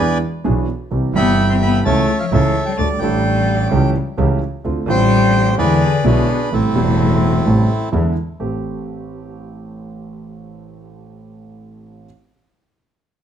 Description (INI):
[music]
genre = tango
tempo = 128 BPM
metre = 4/4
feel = rubato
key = A minor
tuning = A4 = 437 Hz
[part]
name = bandoneon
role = melody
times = 0.0-7.9 s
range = C4 to C6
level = -19 LUFS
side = right 1 dB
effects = plate reverb
[part]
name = clear cello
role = second line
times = 0.0-7.9 s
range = A2 to C4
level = -21 LUFS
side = left 8 dB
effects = none
[part]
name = warm concert grand piano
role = accompaniment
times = 0.0-12.0 s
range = E1 to A4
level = -20 LUFS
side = right 2 dB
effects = none
[part]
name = clear double bass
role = bass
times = 0.0-8.6 s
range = E1 to E2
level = -18 LUFS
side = right 1 dB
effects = none
[sound]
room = moderate large studio reverb, RT60 0.9 s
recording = close, detailed microphones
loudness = -14 LUFS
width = side -9 dB against mid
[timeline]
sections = 0.0-8.4 A section; 8.4-12.1 B section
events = none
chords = 0.0 E7; 0.9 C; 1.9 A/C#; 2.8 Dsus4; 3.7 A7/C#; 4.7 Dm7; 5.6 E7; 6.5 Am7; 7.9 E7; 8.4 Am7